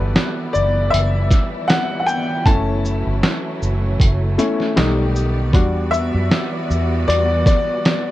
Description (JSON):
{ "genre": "lo-fi hip hop", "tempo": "78 BPM", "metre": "4/4", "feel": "swing 56% on 16ths", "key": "E minor", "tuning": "A4 = 440 Hz", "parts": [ { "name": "clear upright piano", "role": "accompaniment", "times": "0.0-8.1 s", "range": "G3 to A5", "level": "-20 LUFS", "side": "left 2 dB", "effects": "none" }, { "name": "muted studio string section", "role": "sustained chords", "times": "0.0-8.1 s", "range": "D#3 to D5", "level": "-26 LUFS", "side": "right 1 dB", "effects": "none" }, { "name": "vintage muted fingered electric bass", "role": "bass", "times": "0.0-7.4 s", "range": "F#1 to F#2", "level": "-19 LUFS", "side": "equal", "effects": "none" }, { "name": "lo-fi sampler-style drum kit", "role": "drums", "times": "0.2-8.1 s", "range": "hi-hat, kick drum, shaker, snare drum", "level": "-17 LUFS", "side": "equal", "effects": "none" } ], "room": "light reverb", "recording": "dark, warm production", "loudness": "-15 LUFS", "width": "side -15 dB against mid", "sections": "0.0-8.1 A section", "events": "upright piano solo 0.0-8.1", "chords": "0.0 Em9; 2.5 F#m7; 4.8 B7alt; 5.5 Em9" }